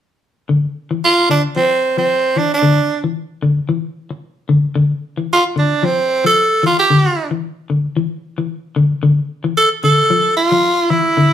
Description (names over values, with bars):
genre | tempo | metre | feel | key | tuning
afrobeat | 112 BPM | 4/4 | swing 54% on 16ths | D minor | A4 = 440 Hz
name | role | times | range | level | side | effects
clean electric guitar | arpeggios | 0.5-11.3 s | D3 to F3 | -16 LUFS | left 3 dB | none
raspy tenor saxophone | melody | 1.0-11.3 s | C4 to A4 | -13 LUFS | right 2 dB | none
room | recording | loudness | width
wet studio reverb, RT60 0.8 s | band playing live in one room | -13 LUFS | side -10 dB against mid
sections
0.5-11.3 A section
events
none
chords
0.5 Dm; 2.6 Dsus2; 4.8 Dm; 6.9 Dsus2; 9.0 Dm